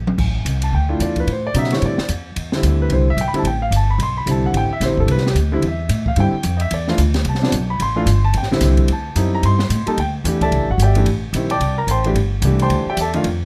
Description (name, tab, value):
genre	modal jazz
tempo	220 BPM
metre	4/4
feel	swing 60% on 8ths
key	A minor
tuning	A4 = 439 Hz
part	upright bass	bass	0.0-13.4 s	G1 to B2	-20 LUFS	equal	none
part	open jazz drum kit	drums	0.1-13.3 s	crash cymbal, hi-hat, kick drum, ride cymbal, snare drum, toms	-28 LUFS	equal	none
part	warm grand piano	accompaniment	0.6-13.2 s	C3 to D6	-22 LUFS	equal	none
room	little or no reverb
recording	close, detailed microphones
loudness	-18 LUFS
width	mono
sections	0.2-8.9 A section; 8.9-13.4 A section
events	drum fill 0.0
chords	0.2 Am11; 8.9 D9sus4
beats	| 0.19 0.46 0.73 1.00 | 1.28 1.55 1.82 2.09 | 2.37 2.64 2.91 3.18 | 3.45 3.73 4.00 4.27 | 4.54 4.81 5.08 5.36 | 5.63 5.90 6.17 6.44 | 6.71 6.99 7.26 7.53 | 7.80 8.07 8.35 8.62 | 8.89 9.16 9.43 9.71 | 9.98 10.25 10.52 10.79 | 11.07 11.34 11.61 11.88 | 12.16 12.43 12.70 12.97 | 13.24